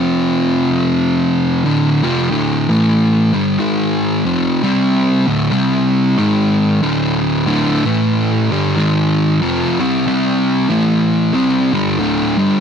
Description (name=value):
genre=metal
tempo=93 BPM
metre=4/4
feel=swing 61% on 8ths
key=D minor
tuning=A4 = 440 Hz
part: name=fuzz guitar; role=solo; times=0.0-12.6 s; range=D2 to C4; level=-13 LUFS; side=equal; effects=distortion
room=little or no reverb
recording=dry, close 1970s-style studio recording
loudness=-13 LUFS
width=side -7 dB against mid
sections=0.0-2.3 A section; 2.3-12.6 B section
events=none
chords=0.0 F5; 1.7 Dm; 2.3 D5; 2.6 A5; 3.3 G5; 3.6 G#5; 4.2 F5; 4.6 C5; 5.2 D5; 5.5 C5; 6.2 G#5; 6.8 D5; 7.8 A5; 8.4 G5; 8.8 G#5; 9.4 Fsus2; 10.1 C5; 10.7 A5; 11.3 D5